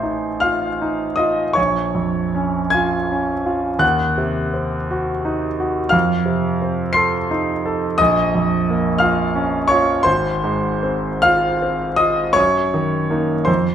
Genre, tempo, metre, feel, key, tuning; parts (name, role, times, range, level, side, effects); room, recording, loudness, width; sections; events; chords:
classical, romantic nocturne for solo piano; 48-59 BPM (dotted quarters); 12/8; rubato; Bb minor; A4 = 442 Hz
bright concert grand piano; solo; 0.0-13.7 s; Ab1 to C7; -16 LUFS; equal
wet recital hall reverb, RT60 1.6 s; -16 LUFS; side -9 dB against mid
0.0-13.7 A section
0.0 F7/A; 1.6 Bbm; 3.8 Cdim/Eb; 5.9 F7; 8.0 Bbm; 10.1 Fm/Ab; 12.4 Ebm/Gb